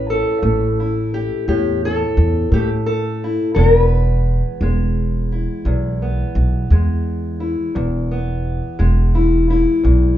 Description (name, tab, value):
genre	acoustic country blues, solo or duo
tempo	57 BPM (dotted quarters)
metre	12/8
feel	straight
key	E major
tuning	A4 = 440 Hz
part	fingerpicked steel-string acoustic guitar	melody	0.0-10.2 s	E2 to B4	-19 LUFS	left 2 dB	none
part	upright bass	bass	0.0-10.2 s	E1 to A2	-17 LUFS	equal	none
room	wet small room reverb, RT60 0.5 s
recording	heard from further back in the room, nothing above 7.6 kHz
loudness	-15 LUFS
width	side -12 dB against mid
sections	0.0-10.2 A section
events	none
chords	0.0 A; 3.6 E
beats	0.42 1.47 2.52 | 3.57 4.61 5.66 6.71 | 7.76 8.80 9.85